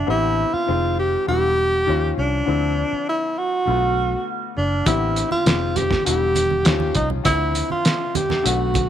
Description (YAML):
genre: lush 1970s-style soul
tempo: 100 BPM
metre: 4/4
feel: straight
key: unclear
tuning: A4 = 435 Hz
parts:
  - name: warm tenor saxophone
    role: melody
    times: 0.0-8.9 s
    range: D4 to G4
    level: -21 LUFS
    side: right 1 dB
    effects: none
  - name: warm grand piano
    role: accompaniment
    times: 0.0-8.9 s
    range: D3 to E5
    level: -26 LUFS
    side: left 11 dB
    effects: none
  - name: vibraphone with medium mallets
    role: texture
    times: 0.0-5.1, 8.8-8.9 s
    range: E5 to F6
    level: -34 LUFS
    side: right 13 dB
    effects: none
  - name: vintage muted fingered electric bass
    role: bass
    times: 0.1-8.9 s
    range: E1 to D#2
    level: -24 LUFS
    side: equal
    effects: none
  - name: cloth-damped thuddy drum kit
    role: drums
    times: 4.9-8.9 s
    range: hi-hat, kick drum, snare drum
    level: -21 LUFS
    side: equal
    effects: none
  - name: congas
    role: percussion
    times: 4.9-8.9 s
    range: none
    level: -29 LUFS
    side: right 9 dB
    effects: none
room: light reverb, small room ambience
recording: 1960s-style stereo with parts hard left and right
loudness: -18 LUFS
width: side -10 dB against mid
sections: 0.0-8.9 A section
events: none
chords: 0.1 Am11; 0.7 Fm7; 1.3 Em7; 1.9 D#sus2; 2.5 Dm9; 3.7 Bm7; 4.9 Am11; 5.5 Fm7; 6.1 Em7; 6.7 D#sus2; 7.3 Dm9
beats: | 0.07 0.68 1.27 1.87 | 2.47 3.07 3.67 4.27 | 4.87 5.46 6.06 6.66 | 7.26 7.85 8.45